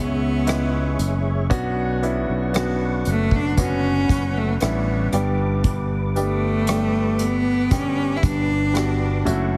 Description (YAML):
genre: pop ballad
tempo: 58 BPM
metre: 4/4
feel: straight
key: unclear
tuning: A4 = 440 Hz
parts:
  - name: clear cello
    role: melody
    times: 0.0-9.3 s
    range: G3 to E4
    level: -26 LUFS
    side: equal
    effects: none
  - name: clear baby grand piano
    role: accompaniment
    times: 0.0-9.6 s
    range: G2 to B4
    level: -28 LUFS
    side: equal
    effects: none
  - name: tonewheel organ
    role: sustained chords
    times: 0.0-9.6 s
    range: G#4 to D6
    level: -35 LUFS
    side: equal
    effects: chorus vibrato, slow rotary speaker
  - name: sustaining fretless electric bass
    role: bass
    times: 0.0-9.6 s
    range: F#1 to C#2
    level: -26 LUFS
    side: equal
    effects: none
  - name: unplugged drum kit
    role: drums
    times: 0.5-9.5 s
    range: hi-hat, kick drum, rim click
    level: -26 LUFS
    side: equal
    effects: none
room: light reverb, studio ambience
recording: heavily compressed radio sound, multiband compression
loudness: -21 LUFS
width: mono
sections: 0.0-9.6 A section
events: none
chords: 0.0 C#m; 1.5 Bmadd9; 5.1 G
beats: 0.47 | 1.51 2.54 3.58 4.61 | 5.64 6.68 7.71 8.75